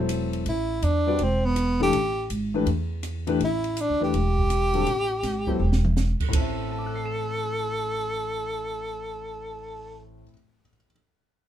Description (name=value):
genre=modal jazz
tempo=164 BPM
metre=4/4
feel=swing 64% on 8ths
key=A dorian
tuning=A4 = 440 Hz
part: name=warm concert grand piano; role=accompaniment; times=0.0-10.9 s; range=A2 to E7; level=-29 LUFS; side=left 4 dB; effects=none
part: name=upright bass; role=bass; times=0.0-10.2 s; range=E1 to E2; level=-27 LUFS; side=right 1 dB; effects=none
part: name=compact cocktail drum kit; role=drums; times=0.1-6.4 s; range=crash cymbal, hi-hat, kick drum, ride cymbal, rim click, snare drum, toms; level=-30 LUFS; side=right 2 dB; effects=none
part: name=breathy tenor saxophone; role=melody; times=0.5-10.0 s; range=B3 to A4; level=-26 LUFS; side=equal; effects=none
room=light reverb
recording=minimal, uncompressed stereo recording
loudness=-23 LUFS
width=side -10 dB against mid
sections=0.0-6.3 A section; 6.3-9.3 B section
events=drum fill 5.6-6.0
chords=0.0 A13sus4; 6.3 Am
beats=0.10 | 0.46 0.83 1.20 1.56 | 1.93 2.30 2.67 3.03 | 3.40 3.77 4.13 4.50 | 4.87 5.23 5.60 5.97 | 6.33 6.70 7.07 7.44 | 7.80 8.17 8.54 8.90